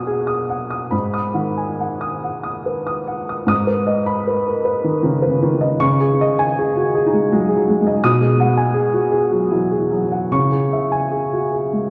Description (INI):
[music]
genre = neoclassical minimalist piano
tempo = 69-83 BPM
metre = 3/4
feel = rubato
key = G# minor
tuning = A4 = 439 Hz
[part]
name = warm upright piano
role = solo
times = 0.0-11.9 s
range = G#2 to D#6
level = -18 LUFS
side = equal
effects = slapback echo
[sound]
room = wet cathedral reverb, RT60 5.5 s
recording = in a vast, echoing space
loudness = -19 LUFS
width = mono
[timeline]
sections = 0.0-3.5 A section; 3.5-11.9 B section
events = none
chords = 0.0 G#m7/B; 0.9 G#m7; 3.5 G#m; 5.8 C#sus2; 8.0 G#m7/B; 10.3 C#m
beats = 0.07 | 0.92 1.79 2.66 | 3.49 4.27 5.04 | 5.81 6.57 7.30 | 8.02 8.74 9.50 | 10.29 11.11